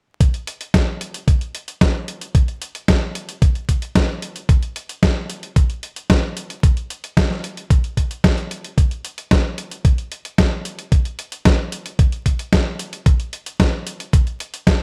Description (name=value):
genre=italo disco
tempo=112 BPM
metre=4/4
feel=straight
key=none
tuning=none
part: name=dusty soul sampler-style drum kit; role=drums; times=0.2-14.8 s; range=hi-hat, snare drum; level=-23 LUFS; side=equal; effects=studio reverb
part: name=electronic kick drum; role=drums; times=0.2-14.8 s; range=none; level=-18 LUFS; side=equal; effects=studio reverb
room=light reverb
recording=vinyl crackle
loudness=-20 LUFS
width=mono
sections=0.2-14.8 A section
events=none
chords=none